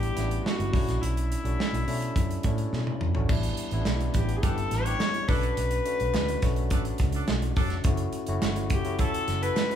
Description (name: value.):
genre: polished 1980s jazz-funk pop.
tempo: 105 BPM.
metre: 4/4.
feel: straight.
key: unclear.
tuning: A4 = 440 Hz.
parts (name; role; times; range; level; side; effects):
warm viola; melody; 0.0-9.8 s; E4 to C#5; -31 LUFS; left 3 dB; none.
overdriven tine electric piano; accompaniment; 0.0-9.8 s; G3 to G4; -33 LUFS; left 2 dB; none.
vintage muted fingered electric bass; bass; 0.0-9.5 s; E1 to B2; -29 LUFS; equal; none.
modern studio drum kit; drums; 0.0-9.8 s; crash cymbal, hi-hat, kick drum, snare drum, toms; -28 LUFS; right 1 dB; none.
group handclap; percussion; 3.9-9.7 s; none; -44 LUFS; right 4 dB; none.
warm horn section; second line; 4.4-9.5 s; E3 to A4; -37 LUFS; right 1 dB; none.
room: moderate large studio reverb, RT60 1.2 s.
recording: band playing live in one room.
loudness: -24 LUFS.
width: side -9 dB against mid.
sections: 0.0-3.3 A section; 3.3-9.8 B section.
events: drum fill 2.7-3.3.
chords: 0.0 A9sus4; 0.7 Bm11; 3.3 A7sus4; 5.3 Bm7; 7.9 F#m7.